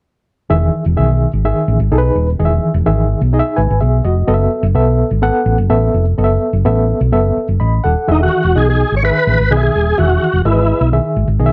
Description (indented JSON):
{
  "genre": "uptempo 1960s-style soul",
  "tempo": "127 BPM",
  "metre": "4/4",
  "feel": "straight",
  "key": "E major",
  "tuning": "A4 = 440 Hz",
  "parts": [
    { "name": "barky reed electric piano", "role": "accompaniment", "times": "0.5-11.5 s", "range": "D#3 to B5", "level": "-19 LUFS", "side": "equal", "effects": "overdrive, fast tremolo" },
    { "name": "hollow-body short-scale fingered electric bass", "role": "bass", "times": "0.5-11.5 s", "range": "D#1 to B1", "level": "-16 LUFS", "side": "equal", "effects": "none" },
    { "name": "overdriven tonewheel organ", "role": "melody", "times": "8.1-10.9 s", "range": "D#4 to C#5", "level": "-17 LUFS", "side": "equal", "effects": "chorus vibrato, fast rotary speaker" }
  ],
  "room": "moderate large studio reverb, RT60 0.9 s",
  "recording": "dark, warm production",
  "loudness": "-14 LUFS",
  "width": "mono",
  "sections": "0.5-8.1 A section; 8.1-11.5 B section",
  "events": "none",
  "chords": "0.5 Emaj7"
}